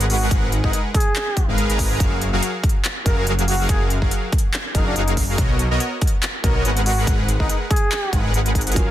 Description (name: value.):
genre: future bass.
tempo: 142 BPM.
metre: 4/4.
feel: swing 55% on 16ths, half-time.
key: unclear.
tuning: A4 = 440 Hz.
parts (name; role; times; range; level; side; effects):
soft supersaw; riff; 0.0-8.9 s; F#3 to A#5; -24 LUFS; equal; sidechain pumping, dub echo.
wide detuned saw bass; bass; 0.0-8.9 s; F#1 to B1; -21 LUFS; equal; chorus, sidechain pumping.
big-room dance drum kit; drums; 0.0-8.9 s; handclaps, hi-hat; -26 LUFS; equal; none.
trumpet with bucket mute; melody; 0.1-8.3 s; D#4 to A#4; -28 LUFS; equal; vintage 12-bit sampler grit, sidechain pumping, dub echo.
electronic kick drum; drums; 0.3-8.9 s; none; -20 LUFS; equal; none.
felt-muted upright piano; accompaniment; 8.7-8.9 s; F#3 to A#4; -25 LUFS; right 3 dB; sidechain pumping.
room: digital ambience.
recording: dense, heavily limited modern master.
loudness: -17 LUFS.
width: side -13 dB against mid.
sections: 0.0-8.9 A section.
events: drum fill 8.6.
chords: 0.1 G#m9; 2.0 F#maj7; 5.4 Bmaj7; 6.9 G#m9.